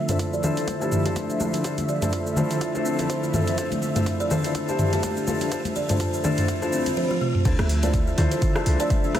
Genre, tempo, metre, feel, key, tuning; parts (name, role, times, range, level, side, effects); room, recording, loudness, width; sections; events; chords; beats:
afro house; 124 BPM; 4/4; swing 56% on 16ths; D minor; A4 = 439 Hz
warm analog pad; sustained chords; 0.0-9.2 s; D3 to E5; -29 LUFS; right 1 dB; chorus, vintage 12-bit sampler grit, sidechain pumping
buzzing kalimba; arpeggios; 0.1-9.1 s; A3 to D5; -29 LUFS; right 1 dB; sidechain pumping, low-pass filter, diffuse ambient delay
felt-muted upright piano; stabs; 0.1-9.2 s; D4 to C5; -28 LUFS; left 3 dB; lush chorus, sidechain pumping, low-pass filter, diffuse ambient delay
afro-pop drum kit; drums; 0.1-9.2 s; crash cymbal, hi-hat, rim click, shaker, toms; -28 LUFS; equal; overdrive, studio reverb
congas; percussion; 0.1-9.2 s; -30 LUFS; left 1 dB
electronic kick drum; drums; 0.2-9.0 s; -25 LUFS; equal; overdrive, high-pass filter on kick, studio reverb
warm 808-style bass; bass; 7.5-8.8 s; C2 to D2; -22 LUFS; equal; tube saturation, sidechain pumping
wet lush hall reverb, RT60 1.7 s; dreamy mix soaked in reverb; -21 LUFS; side -11 dB against mid
0.0-7.5 A section; 7.5-9.2 B section
build-up 0.0-7.5; filter sweep on kalimba 0.0-7.5; drum fill 7.0-7.5; drop 7.5-9.2
0.0 Dm9
0.19 0.68 1.16 | 1.65 2.13 2.61 3.10 | 3.58 4.07 4.55 5.03 | 5.52 6.00 6.48 6.97 | 7.45 7.94 8.42 8.90